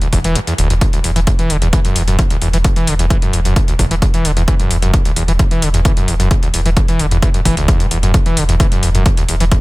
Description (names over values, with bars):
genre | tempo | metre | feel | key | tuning
driving peak-time techno | 131 BPM | 4/4 | straight | unclear | A4 = 440 Hz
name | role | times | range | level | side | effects
screaming distorted acid line | riff | 0.0-9.6 s | D2 to E3 | -18 LUFS | equal | distortion, chorus, sidechain pumping, dub echo
electronic hi-hat | drums | 0.0-9.6 s | none | -22 LUFS | left 1 dB | none
saturated sub bass | bass | 0.1-9.5 s | E1 | -16 LUFS | equal | sidechain pumping, low-pass filter
electronic kick drum | drums | 0.1-9.6 s | none | -14 LUFS | equal | none
room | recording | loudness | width
little or no reverb | none | -12 LUFS | side -21 dB against mid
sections
0.0-9.6 A section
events
kick drops out 0.4-0.8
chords
none